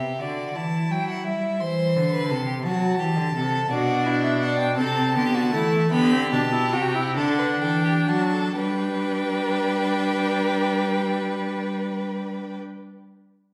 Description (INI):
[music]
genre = classical, baroque-style fugue for string quartet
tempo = 40-58 BPM (dotted quarters)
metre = 6/8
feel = straight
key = G major from 3.7 s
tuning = A4 = 440 Hz
[part]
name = rich violin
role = melody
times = 0.0-12.6 s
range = D5 to C6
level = -32 LUFS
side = equal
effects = none
[part]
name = bright violin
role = second line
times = 0.0-12.6 s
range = D4 to C5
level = -30 LUFS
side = equal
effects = none
[part]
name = rich cello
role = bass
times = 0.0-12.6 s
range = B2 to G3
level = -28 LUFS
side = equal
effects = none
[part]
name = clear viola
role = accompaniment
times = 3.7-12.6 s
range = A3 to F#4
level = -27 LUFS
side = equal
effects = none
[sound]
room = wet recital hall reverb, RT60 1.3 s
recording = heard from further back in the room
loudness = -23 LUFS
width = mono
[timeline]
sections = 0.0-8.6 A section; 8.6-13.5 B section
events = slowing down 2.6-8.6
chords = 0.0 G5; 0.6 Em; 1.6 Am (rootless); 2.6 F#dim; 3.7 Bm; 4.8 Am/C; 5.9 G; 7.2 D; 8.6 G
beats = 0.55 | 1.60 2.65 | 3.69 4.78 | 5.92 7.16 | 8.56 10.05 | 11.54